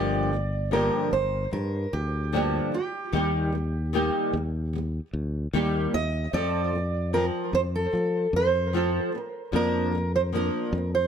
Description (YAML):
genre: acoustic pop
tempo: 75 BPM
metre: 4/4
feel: straight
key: G minor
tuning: A4 = 445 Hz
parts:
  - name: fingerpicked steel-string acoustic guitar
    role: melody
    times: 0.0-11.1 s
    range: G4 to Eb5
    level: -28 LUFS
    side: right 2 dB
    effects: plate reverb, tape echo
  - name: nylon-string guitar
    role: accompaniment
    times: 0.0-11.1 s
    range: G2 to Bb4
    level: -27 LUFS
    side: left 1 dB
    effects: double-tracked left and right, plate reverb
  - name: fingered electric bass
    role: bass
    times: 0.0-11.1 s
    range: G1 to F3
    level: -28 LUFS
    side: left 1 dB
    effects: none
room: moderate studio reverb, RT60 0.7 s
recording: none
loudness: -24 LUFS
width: side -8 dB against mid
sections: 0.0-11.1 A section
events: none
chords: 0.0 Gm7; 3.1 Eb; 6.3 F; 9.5 Bb/F